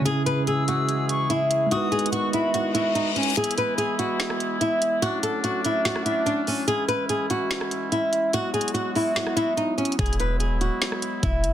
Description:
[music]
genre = hip hop, trap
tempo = 145 BPM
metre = 4/4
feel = half-time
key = C# minor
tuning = A4 = 440 Hz
[part]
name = tine electric piano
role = accompaniment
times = 0.0-3.4 s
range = C#3 to B4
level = -26 LUFS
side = right 1 dB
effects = medium stereo tremolo
[part]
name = warm woodwind section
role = sustained chords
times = 0.0-11.5 s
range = D#3 to G#4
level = -30 LUFS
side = left 1 dB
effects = none
[part]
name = flamenco guitar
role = melody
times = 0.1-11.5 s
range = C#4 to B4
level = -24 LUFS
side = equal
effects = ping-pong delay
[part]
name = trap drum kit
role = drums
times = 0.1-11.5 s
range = finger snaps, hi-hat, kick drum, rim click, snare drum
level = -28 LUFS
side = equal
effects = vintage 12-bit sampler grit
[part]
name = reedy silver concert flute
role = second line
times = 0.5-3.4 s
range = G#5 to E6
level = -30 LUFS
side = left 2 dB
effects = ping-pong delay
[part]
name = reverse cymbal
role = sound effects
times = 2.7-3.4 s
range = none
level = -29 LUFS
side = left 6 dB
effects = none
[part]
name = warm 808-style bass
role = bass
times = 10.0-11.5 s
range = D#1 to F#1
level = -25 LUFS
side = equal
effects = none
[sound]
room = light reverb, studio reverb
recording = dense, heavily limited modern master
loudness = -21 LUFS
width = side -11 dB against mid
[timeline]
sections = 0.0-3.4 A section; 3.4-11.5 B section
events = reverse cymbal 2.7-3.4; kick muted 3.4-10.0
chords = 0.1 C#m; 1.7 G#m7; 3.4 E; 5.0 Dmaj7; 6.7 C#m; 8.3 G#m7; 10.0 Emaj7

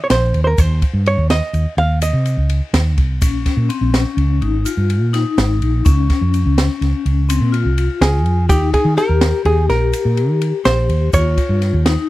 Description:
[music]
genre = progressive instrumental, band music in an uneven meter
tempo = 250 BPM (eighths)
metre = 11/8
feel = straight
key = unclear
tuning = A4 = 441 Hz
[part]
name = hollow-body jazz guitar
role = melody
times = 0.0-2.9, 8.0-11.8 s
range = G4 to F5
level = -19 LUFS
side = right 2 dB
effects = none
[part]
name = woody fretless electric bass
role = bass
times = 0.1-12.0 s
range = Ab1 to Eb3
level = -16 LUFS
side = equal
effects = none
[part]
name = open jazz drum kit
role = drums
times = 0.1-12.0 s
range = kick drum, ride cymbal, snare drum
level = -19 LUFS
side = equal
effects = none
[part]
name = tube shaker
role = percussion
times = 0.1-11.5 s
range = none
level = -34 LUFS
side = right 12 dB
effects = none
[part]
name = vibraphone with medium mallets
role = second line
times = 3.2-12.1 s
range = C4 to G4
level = -21 LUFS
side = left 8 dB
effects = none
[sound]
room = little or no reverb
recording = dry, close 1970s-style studio recording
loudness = -13 LUFS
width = side -16 dB against mid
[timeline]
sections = 0.0-12.1 A section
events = none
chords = 0.0 Cm7; 0.6 N.C.; 3.2 Bbm7; 5.9 Db; 8.5 Cm7 (rootless); 11.1 Eb7

